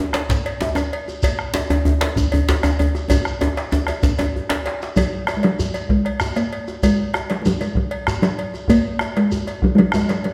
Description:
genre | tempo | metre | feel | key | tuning
west african traditional, West African drum ensemble | 129 BPM (dotted quarters) | 12/8 | straight | F# major pentatonic | A4 = 435 Hz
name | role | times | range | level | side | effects
bombo | percussion | 0.1-10.1 s | none | -26 LUFS | equal | none
cowbell | percussion | 0.1-10.3 s | none | -30 LUFS | equal | none
djembe | percussion | 0.1-10.2 s | none | -31 LUFS | equal | none
djembe | percussion | 0.1-4.6 s | none | -22 LUFS | equal | none
shekere | percussion | 0.3-10.2 s | none | -32 LUFS | equal | none
talking drum | melody | 5.0-10.3 s | F#3 to A#3 | -21 LUFS | equal | none
room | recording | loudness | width
wet recital hall reverb, RT60 1.4 s | none | -20 LUFS | mono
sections
0.0-5.0 A section; 5.0-10.3 B section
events
drum fill 3.1-5.0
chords
none

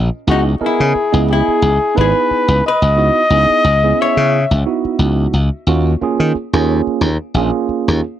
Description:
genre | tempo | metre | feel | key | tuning
jazz | 89 BPM | 4/4 | swing 56% on 16ths | unclear | A4 = 440 Hz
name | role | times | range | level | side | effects
glassy slap bass | bass | 0.0-8.0 s | Ab1 to Eb3 | -14 LUFS | left 1 dB | none
dark trumpet | melody | 0.3-4.7 s | Gb4 to Fb5 | -15 LUFS | left 2 dB | plate reverb
archtop guitar, miked and amplified | second line | 0.3-4.7 s | Eb4 to Db5 | -22 LUFS | left 5 dB | plate reverb
bright tine electric piano | accompaniment | 0.3-8.0 s | Bb3 to Eb5 | -19 LUFS | right 8 dB | auto-pan, plate reverb
room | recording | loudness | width
light reverb | none | -12 LUFS | side -11 dB against mid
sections
0.0-8.2 A section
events
none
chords
0.3 Dbm9; 5.7 Eb7sus2

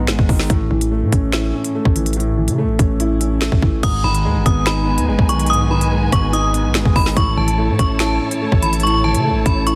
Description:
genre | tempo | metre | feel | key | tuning
hip hop, drill | 144 BPM | 4/4 | half-time | G# phrygian | A4 = 440 Hz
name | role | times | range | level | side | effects
dark grand piano | accompaniment | 0.0-9.8 s | G#2 to E4 | -22 LUFS | equal | none
distorted 808-style bass | bass | 0.0-9.8 s | G#1 to C#3 | -22 LUFS | equal | distortion
drill drum kit | drums | 0.1-9.8 s | crash cymbal, finger snaps, hi-hat, kick drum, rim click, snare drum | -20 LUFS | equal | none
metallic FM bell | melody | 3.8-9.8 s | A5 to D#6 | -23 LUFS | equal | chorus, tremolo
dark symphonic string section | sustained chords | 3.8-9.8 s | D#4 to A5 | -29 LUFS | equal | none
room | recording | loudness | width
light reverb, digital ambience | dense, heavily limited modern master, vinyl crackle | -17 LUFS | mono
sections
0.0-3.8 A section; 3.8-9.8 B section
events
none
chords
0.5 A; 3.8 G#m; 7.2 A

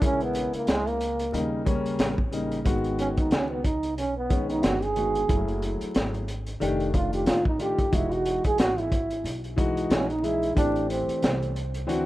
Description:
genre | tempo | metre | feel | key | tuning
hip hop, jazz-hop | 91 BPM | 4/4 | swing 57% on 16ths | E major | A4 = 441 Hz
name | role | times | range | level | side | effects
breathy trombone | melody | 0.0-11.5 s | G#3 to G#4 | -28 LUFS | right 2 dB | analog delay
dark grand piano | accompaniment | 0.0-12.1 s | C#3 to A#4 | -28 LUFS | left 2 dB | none
upright bass | bass | 0.0-12.1 s | E1 to D#2 | -33 LUFS | equal | none
crunchy breakbeat drum kit | drums | 0.0-12.1 s | hi-hat, kick drum, snare drum | -26 LUFS | equal | vintage 12-bit sampler grit
room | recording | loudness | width
studio reverb | rough home demo mix, vinyl crackle | -23 LUFS | side -16 dB against mid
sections
0.0-12.1 A section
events
trombone solo 0.0-12.1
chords
0.0 A#m7b5; 1.3 D#7; 2.7 G#m7; 5.3 F#m9; 6.6 F13; 7.9 Emaj9; 10.6 Am7

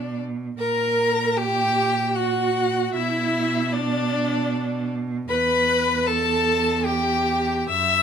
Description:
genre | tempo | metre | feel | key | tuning
classical, slow romantic movement for string quartet | 76 BPM | 3/4 | rubato | B minor | A4 = 441 Hz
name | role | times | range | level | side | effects
warm violin | melody | 0.0-8.0 s | D5 to E6 | -25 LUFS | left 6 dB | none
rich violin | second line | 0.0-8.0 s | D4 to E5 | -25 LUFS | left 1 dB | none
rich viola | accompaniment | 0.0-8.0 s | D4 to E5 | -26 LUFS | right 3 dB | none
rich cello | bass | 0.0-8.0 s | E2 to B2 | -26 LUFS | right 4 dB | none
room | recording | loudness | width
little or no reverb | close, detailed microphones | -20 LUFS | side -7 dB against mid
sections
0.0-8.0 A section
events
none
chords
0.0 B5; 0.6 F#/A#; 3.0 Bm; 5.3 Em

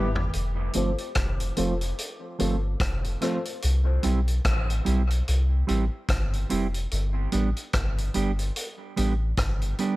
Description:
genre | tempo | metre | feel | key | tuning
dub reggae | 73 BPM | 4/4 | swing 57% on 16ths | unclear | A4 = 440 Hz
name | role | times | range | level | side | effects
mellow electric guitar | accompaniment | 0.0-10.0 s | F3 to G4 | -30 LUFS | right 4 dB | low-pass filter, dub echo
dark upright piano | stabs | 0.0-3.4 s | C4 to C5 | -34 LUFS | left 5 dB | low-pass filter, dub echo
soft dub sub bass | bass | 0.0-9.7 s | F1 to C2 | -25 LUFS | equal | none
vintage drum kit | drums | 0.2-10.0 s | hi-hat, kick drum, rim click, toms | -29 LUFS | equal | none
room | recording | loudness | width
small room ambience | none | -23 LUFS | side -18 dB against mid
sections
0.3-10.0 A section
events
drum fill 0.0-0.3; filter sweep 0.3-10.0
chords
0.3 F; 3.6 C; 6.9 G

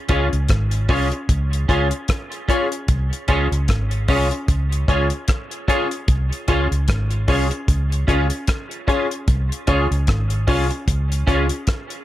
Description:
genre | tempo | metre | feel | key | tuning
roots reggae | 75 BPM | 4/4 | swing 57% on 16ths | Db major | A4 = 442 Hz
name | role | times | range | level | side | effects
clean electric guitar | accompaniment | 0.1-11.5 s | Db4 to Db5 | -25 LUFS | right 3 dB | ensemble chorus, dub echo
bright grand piano | stabs | 0.1-11.5 s | Db4 to Db5 | -26 LUFS | left 6 dB | none
vintage muted fingered electric bass | bass | 0.1-11.5 s | Ab1 to Db2 | -20 LUFS | equal | none
damped 70s drum kit | drums | 0.1-12.0 s | hi-hat, kick drum, rim click | -20 LUFS | equal | none
room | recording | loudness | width
light reverb, small room ambience | none | -17 LUFS | side -14 dB against mid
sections
0.0-12.0 A section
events
none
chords
0.0 Db

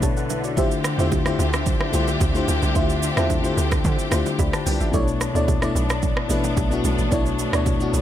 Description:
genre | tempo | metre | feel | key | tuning
amapiano | 110 BPM | 4/4 | straight | unclear | A4 = 441 Hz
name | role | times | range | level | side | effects
FM electric piano | accompaniment | 0.0-8.0 s | B2 to B5 | -24 LUFS | left 5 dB | chorus
rich studio string section | sustained chords | 0.0-8.0 s | D3 to E5 | -28 LUFS | right 1 dB | sidechain pumping
hollow log drum bass | bass | 0.0-8.0 s | A1 to D3 | -24 LUFS | right 1 dB | none
afro-pop drum kit | drums | 0.0-8.0 s | hi-hat, kick drum, rim click, shaker | -24 LUFS | right 1 dB | none
bongos and congas | percussion | 0.0-7.8 s | none | -33 LUFS | right 10 dB | none
deep mellow chord stab | stabs | 0.6-7.6 s | E4 to E5 | -30 LUFS | right 3 dB | chorus, tape echo
room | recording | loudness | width
little or no reverb | none | -19 LUFS | side -11 dB against mid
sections
0.0-8.0 A section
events
none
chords
0.0 Bm11; 0.6 Dm11; 4.9 Bm11

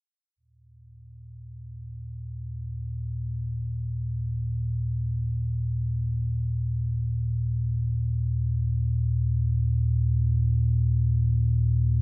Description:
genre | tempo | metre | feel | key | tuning
ambient | free time | none | none | unclear | A4 = 441 Hz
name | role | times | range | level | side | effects
deep rumbling drone | drone | 1.1-12.0 s | Eb2 to Bb2 | -24 LUFS | equal | built-in reverb, wide subtle chorus
room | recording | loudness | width
wet cathedral reverb, RT60 5.2 s | none | -24 LUFS | side -23 dB against mid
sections
0.4-12.0 A section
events
filter sweep on synth drone 0.4-12.0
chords
0.4 Eb5

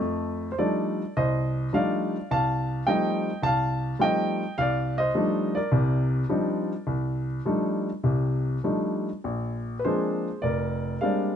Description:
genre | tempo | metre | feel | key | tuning
solo jazz | 103 BPM | 4/4 | swing 69% on 8ths, rubato | F mixolydian | A4 = 440 Hz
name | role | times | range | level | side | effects
warm baby grand piano | solo | 0.0-11.4 s | F1 to A5 | -24 LUFS | equal | none
room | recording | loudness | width
light reverb | nothing above 10.5 kHz | -24 LUFS | side -8 dB against mid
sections
0.0-11.4 A section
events
none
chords
0.0 F13; 9.2 Bb13

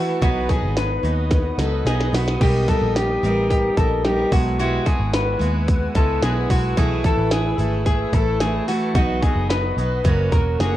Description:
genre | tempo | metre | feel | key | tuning
jangly indie pop | 110 BPM | 4/4 | straight | B mixolydian | A4 = 441 Hz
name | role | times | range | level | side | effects
picked steel-string acoustic guitar | accompaniment | 0.0-10.8 s | F#2 to B4 | -24 LUFS | right 2 dB | none
soft string machine | sustained chords | 0.0-10.8 s | A#4 to E6 | -33 LUFS | right 1 dB | phaser, ensemble chorus
electric guitar through a small old amp | arpeggios | 0.0-10.8 s | F#4 to B4 | -24 LUFS | left 2 dB | tape echo
vintage muted picked electric bass | bass | 0.2-10.8 s | E1 to D#2 | -23 LUFS | equal | none
minimal click drum kit | drums | 0.2-10.7 s | crash cymbal, hi-hat, kick drum, snare drum | -22 LUFS | equal | none
room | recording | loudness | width
moderate small room reverb, RT60 0.6 s | worn, warbling old tape, cassette tape, warbly pitch drift | -17 LUFS | side -14 dB against mid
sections
0.0-10.8 A section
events
drum fill 1.3-2.4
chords
0.2 B; 2.4 D#; 4.3 Eadd9; 6.8 Asus2; 9.0 B; 10.0 F#

